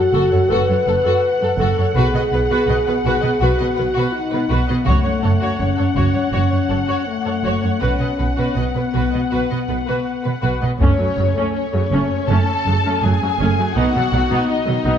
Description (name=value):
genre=cinematic, epic orchestral film score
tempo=82 BPM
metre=4/4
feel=straight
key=F# dorian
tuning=A4 = 443 Hz
part: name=dark studio violin section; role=melody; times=0.0-15.0 s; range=C#5 to A5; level=-25 LUFS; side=left 5 dB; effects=none
part: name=warm symphonic violin section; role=second line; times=0.0-15.0 s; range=C#4 to D#5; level=-27 LUFS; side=left 3 dB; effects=none
part: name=dark French horn section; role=sustained chords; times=0.0-15.0 s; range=A3 to B4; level=-22 LUFS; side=left 3 dB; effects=none
part: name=rich symphonic cello section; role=bass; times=0.0-14.9 s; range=F#2 to B2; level=-22 LUFS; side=right 2 dB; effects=none
part: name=warm symphonic viola section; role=accompaniment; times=0.1-15.0 s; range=C#3 to C#5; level=-24 LUFS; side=right 1 dB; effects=none
part: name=rich studio double bass section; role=bass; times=0.1-14.9 s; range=F#1 to B1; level=-22 LUFS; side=right 3 dB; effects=none
part: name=taiko ensemble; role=drums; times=4.9-6.3, 10.8-12.3 s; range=none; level=-19 LUFS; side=left 1 dB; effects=none
room=moderate concert hall reverb, RT60 2.2 s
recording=dark, warm production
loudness=-16 LUFS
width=side -9 dB against mid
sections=0.0-10.8 A section; 10.8-15.0 B section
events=none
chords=0.0 F#m; 2.0 B; 4.9 F#m; 7.8 B5; 10.8 F#m; 13.8 B